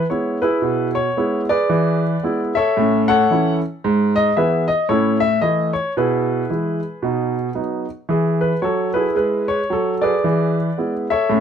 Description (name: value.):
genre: jazz, stride piano.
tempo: 113 BPM.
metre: 4/4.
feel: swing 60% on 8ths.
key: E major.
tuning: A4 = 440 Hz.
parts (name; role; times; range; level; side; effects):
clear upright piano; solo; 0.0-11.4 s; G#2 to F#5; -16 LUFS; equal; none.
room: light reverb.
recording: close, detailed microphones.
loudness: -16 LUFS.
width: side -8 dB against mid.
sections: 0.0-11.4 A section.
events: none.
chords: 0.0 E; 1.7 E7; 2.8 A6; 3.8 E/G#; 4.9 A; 6.0 E/B; 7.0 B; 8.1 E; 10.2 E7.